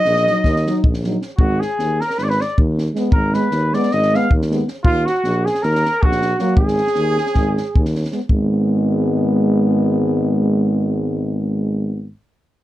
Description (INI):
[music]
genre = balkan folk, Balkan brass band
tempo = 312 BPM (eighths)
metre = 9/8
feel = straight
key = Ab dorian sharp4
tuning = A4 = 440 Hz
[part]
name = clear flugelhorn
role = melody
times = 0.0-7.9 s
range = F4 to F5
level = -20 LUFS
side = left 1 dB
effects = plate reverb
[part]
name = mellow trumpet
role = second line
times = 0.0-7.9 s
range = F4 to F5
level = -22 LUFS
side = right 3 dB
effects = none
[part]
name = mellow French horn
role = accompaniment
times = 0.0-12.1 s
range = Bb3 to Eb4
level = -23 LUFS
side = left 4 dB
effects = none
[part]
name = mellow tuba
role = bass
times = 0.1-12.1 s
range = Ab1 to Eb2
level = -20 LUFS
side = equal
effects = none
[part]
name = compact cocktail drum kit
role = percussion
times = 0.1-8.5 s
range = kick drum, snare drum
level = -19 LUFS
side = equal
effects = none
[part]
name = mellow euphonium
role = accompaniment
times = 0.3-12.1 s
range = Gb3 to Ab3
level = -22 LUFS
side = right 4 dB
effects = none
[sound]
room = light reverb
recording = dark, warm production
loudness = -15 LUFS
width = side -15 dB against mid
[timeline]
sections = 0.0-8.3 A section; 8.3-11.8 B section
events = none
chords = 0.0 Ebm; 1.4 Abm; 4.8 Ebm; 6.6 Ab5; 8.3 Abm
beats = 0.04 0.23 0.43 0.62 0.81 1.01 1.20 | 1.39 1.58 1.77 1.97 2.16 2.35 2.54 2.73 2.93 | 3.12 3.31 3.50 3.69 3.89 4.08 4.27 4.46 4.65 | 4.85 5.04 5.23 5.42 5.61 5.80 6.00 6.19 6.38 | 6.57 6.76 6.96 7.15 7.34 7.53 7.72 7.92 8.11 | 8.30 8.49 8.69 8.88 9.07 9.26 9.45 9.65 9.84 | 10.03 10.22 10.41 10.61 10.80 10.99 11.18 11.38 11.57